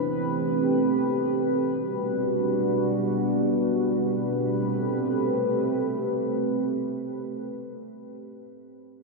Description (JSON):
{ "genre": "amapiano", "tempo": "free time", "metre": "none", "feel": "none", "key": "A dorian", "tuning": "A4 = 440 Hz", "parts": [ { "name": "deep dark ambient pad", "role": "sustained chords", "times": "0.0-7.6 s", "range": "B2 to B4", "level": "-24 LUFS", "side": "right 1 dB", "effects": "chorus, built-in reverb" } ], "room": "light reverb", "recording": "echo-heavy mix, nothing above 10.6 kHz", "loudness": "-23 LUFS", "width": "side -1 dB against mid", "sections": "0.0-3.8 A section; 3.8-8.1 B section", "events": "none", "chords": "0.0 Am9; 1.4 Gmaj7/B; 3.8 Am9" }